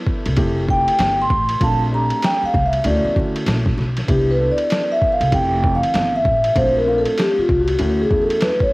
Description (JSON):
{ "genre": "hip hop, jazz-hop", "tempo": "97 BPM", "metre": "4/4", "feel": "swing 63% on 16ths", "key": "C major", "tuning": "A4 = 443 Hz", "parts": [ { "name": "dark concert grand piano", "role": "accompaniment", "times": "0.0-8.7 s", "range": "E3 to A4", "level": "-25 LUFS", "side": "equal", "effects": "cassette tape" }, { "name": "lo-fi sampler-style drum kit", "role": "drums", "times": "0.1-8.7 s", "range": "hi-hat, kick drum, ride cymbal, snare drum", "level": "-22 LUFS", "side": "equal", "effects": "cassette tape" }, { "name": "upright bass", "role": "bass", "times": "0.3-8.5 s", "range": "F1 to D3", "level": "-21 LUFS", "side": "equal", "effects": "none" }, { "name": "vibraphone with soft mallets", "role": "melody", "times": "0.7-8.7 s", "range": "F4 to C6", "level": "-18 LUFS", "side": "equal", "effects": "cassette tape" } ], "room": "studio reverb", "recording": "home recording on cassette, vinyl crackle", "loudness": "-15 LUFS", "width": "side -22 dB against mid", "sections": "0.0-4.1 A section; 4.1-8.7 A section", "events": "vibraphone solo 0.0-4.1, 4.1-8.7", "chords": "0.4 Fmaj9; 1.6 Bbmaj9; 2.8 Dmaj9; 4.1 Cmaj9; 5.3 Fmaj9; 6.6 Bbmaj9; 7.8 Dmaj9" }